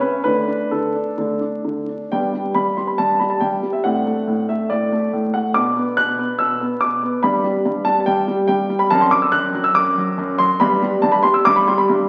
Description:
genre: classical-period piano sonatina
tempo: 141 BPM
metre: 4/4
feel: rubato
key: G major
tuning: A4 = 440 Hz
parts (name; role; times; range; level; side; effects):
- warm grand piano; solo; 0.0-12.1 s; F#2 to F#6; -18 LUFS; equal; none
room: wet recital hall reverb, RT60 1.7 s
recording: very old 78 rpm record, vinyl crackle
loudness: -19 LUFS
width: mono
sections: 0.0-2.1 A section; 2.1-12.1 B section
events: none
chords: 0.2 D5; 2.1 G; 3.8 D7/A; 5.6 Bmadd11; 7.2 G; 8.9 D7/F#; 10.6 G

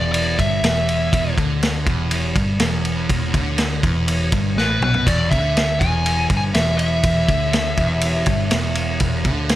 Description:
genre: blues rock power trio and southern rock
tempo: 122 BPM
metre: 4/4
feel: straight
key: unclear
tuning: A4 = 440 Hz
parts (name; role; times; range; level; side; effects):
- nasal lead guitar with a parked wah; melody; 0.0-1.3, 4.6-9.6 s; B4 to G#5; -22 LUFS; equal; overdrive
- sludgy distorted guitar; riff; 0.0-9.6 s; E2 to D3; -22 LUFS; equal; overdrive
- vintage muted picked electric bass; bass; 0.0-9.6 s; E1 to D2; -23 LUFS; equal; none
- vintage drum kit; drums; 0.1-9.6 s; kick drum, ride cymbal, snare drum, splash cymbal, toms; -21 LUFS; equal; none
room: little or no reverb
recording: none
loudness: -16 LUFS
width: side -14 dB against mid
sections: 0.0-9.6 A section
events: drum fill 4.6-5.1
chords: 0.0 E5

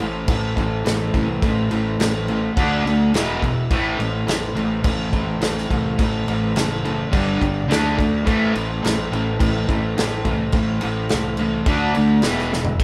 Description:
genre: garage rock duo or trio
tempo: 105 BPM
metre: 4/4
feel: straight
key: A minor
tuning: A4 = 439 Hz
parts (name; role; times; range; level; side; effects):
- overdriven combo organ; sustained chords; 0.0-12.8 s; D4 to C6; -32 LUFS; equal; none
- fuzz guitar; riff; 0.0-12.8 s; E2 to D4; -23 LUFS; equal; distortion
- fuzz fingered electric bass; bass; 0.0-12.8 s; E1 to D2; -30 LUFS; equal; overdrive
- vintage drum kit; drums; 0.0-12.8 s; crash cymbal, kick drum, snare drum, toms; -26 LUFS; equal; none
room: light reverb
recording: band playing live in one room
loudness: -20 LUFS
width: mono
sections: 0.0-12.8 A section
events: drum fill 12.5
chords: 0.0 Am; 2.6 D5; 3.1 E5; 3.7 Am; 7.1 G5; 7.7 D5; 8.3 Am; 11.7 D5; 12.2 E5

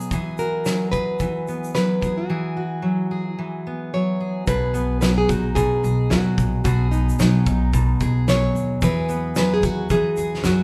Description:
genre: acoustic pop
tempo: 110 BPM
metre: 4/4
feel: swing 60% on 16ths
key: B major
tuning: A4 = 440 Hz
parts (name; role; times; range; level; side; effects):
- fingerpicked steel-string acoustic guitar; accompaniment; 0.0-10.6 s; B2 to G#4; -24 LUFS; equal; none
- loose indie drum kit; drums; 0.0-10.6 s; kick drum, shaker, snare drum; -28 LUFS; equal; none
- nylon-string guitar; melody; 0.4-10.6 s; D#4 to C#5; -27 LUFS; equal; none
- upright bass; bass; 4.5-10.6 s; A#1 to B2; -26 LUFS; equal; none
room: moderate large studio reverb, RT60 1.1 s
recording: band playing live in one room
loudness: -21 LUFS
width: mono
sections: 0.0-4.5 A section; 4.5-10.6 B section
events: none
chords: 0.1 Eadd9; 4.5 B6; 8.8 Eadd9

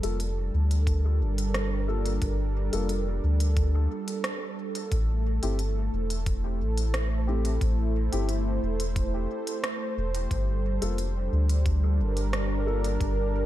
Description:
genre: ambient dub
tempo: 89 BPM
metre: 4/4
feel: straight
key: G dorian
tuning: A4 = 441 Hz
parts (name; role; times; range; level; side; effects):
- warm analog pad; sustained chords; 0.0-13.5 s; G3 to C5; -32 LUFS; right 2 dB; chorus
- dark upright piano; stabs; 0.0-12.9 s; Bb3 to A4; -37 LUFS; left 4 dB; low-pass filter, dub echo
- soft dub sub bass; bass; 0.0-13.5 s; E1 to D2; -26 LUFS; equal; tube saturation
- organic electronic drum kit; drums; 0.0-13.1 s; hi-hat, rim click; -36 LUFS; right 1 dB; overdrive
- electronic kick drum; drums; 0.9-13.1 s; none; -29 LUFS; equal; none
room: little or no reverb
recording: none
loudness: -25 LUFS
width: side -14 dB against mid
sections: 0.0-13.5 A section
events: none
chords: 0.0 Gm9; 4.9 Am7; 10.3 Gm9

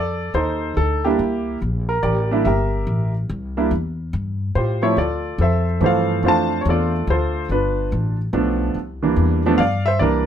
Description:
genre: jazz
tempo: 143 BPM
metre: 3/4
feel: swing 66% on 8ths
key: C mixolydian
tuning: A4 = 440 Hz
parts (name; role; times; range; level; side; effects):
- warm concert grand piano; melody; 0.0-10.3 s; E3 to A5; -19 LUFS; right 2 dB; none
- upright bass; bass; 0.0-10.3 s; G1 to A2; -22 LUFS; left 1 dB; none
room: light reverb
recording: minimal, uncompressed stereo recording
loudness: -18 LUFS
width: side -9 dB against mid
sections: 0.0-10.0 A section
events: none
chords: 0.0 F7; 1.2 C7; 3.7 Em; 4.6 A7alt; 5.0 Dm7; 7.5 G7; 8.8 C7; 9.6 G5

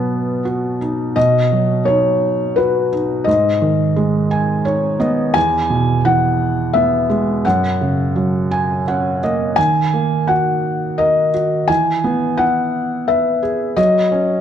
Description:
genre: children's music, lullaby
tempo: 86 BPM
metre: 3/4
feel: straight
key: B major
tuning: A4 = 440 Hz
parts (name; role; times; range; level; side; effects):
- felt-muted upright piano; melody; 0.0-14.4 s; B4 to G#5; -17 LUFS; left 2 dB; none
- felt-muted upright piano; accompaniment; 0.0-14.4 s; E2 to G#5; -17 LUFS; right 2 dB; none
room: moderate recital hall reverb, RT60 1.6 s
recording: dark, warm production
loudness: -14 LUFS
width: side -9 dB against mid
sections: 0.0-1.2 A section; 1.2-14.4 A section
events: felt piano fill 4.0-5.4, 8.2-9.6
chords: 0.0 B; 3.3 G#m; 5.4 Eadd9; 7.5 F#; 9.6 D#m; 11.7 E; 13.8 F#5

